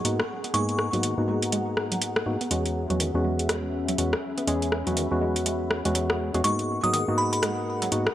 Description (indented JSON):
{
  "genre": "deep house",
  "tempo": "122 BPM",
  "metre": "4/4",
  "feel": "swing 60% on 16ths",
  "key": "G# minor",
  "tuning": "A4 = 440 Hz",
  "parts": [
    { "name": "hollow soft pad", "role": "sustained chords", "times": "0.0-8.1 s", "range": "C#4 to A#5", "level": "-36 LUFS", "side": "left 1 dB", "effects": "chorus" },
    { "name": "percussive organ stab", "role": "stabs", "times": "0.0-8.1 s", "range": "E2 to G#4", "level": "-26 LUFS", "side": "equal", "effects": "chorus" },
    { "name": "deep house drum kit", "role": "drums", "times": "0.0-8.1 s", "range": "hi-hat, rim click", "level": "-28 LUFS", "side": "equal", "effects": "overdrive" },
    { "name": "ethereal airy pad", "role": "texture", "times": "0.0-8.1 s", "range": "C#4 to B5", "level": "-36 LUFS", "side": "left 2 dB", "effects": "ensemble chorus, built-in reverb" },
    { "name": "analog pluck", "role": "arpeggios", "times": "0.4-7.9 s", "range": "D#3 to G#4", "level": "-34 LUFS", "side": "right 3 dB", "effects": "chorus, cassette tape, tape echo" },
    { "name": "glassy synth bell", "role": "melody", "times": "0.5-1.0, 6.4-7.4 s", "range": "B5 to D#6", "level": "-28 LUFS", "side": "equal", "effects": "chorus, tape echo" }
  ],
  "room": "moderate plate reverb, RT60 1.9 s",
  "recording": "none",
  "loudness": "-23 LUFS",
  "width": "side -12 dB against mid",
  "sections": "0.0-8.1 A section",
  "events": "filter sweep on synth arpeggio sound 0.0-8.1",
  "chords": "0.0 G#m9; 2.5 E6; 6.4 G#m9"
}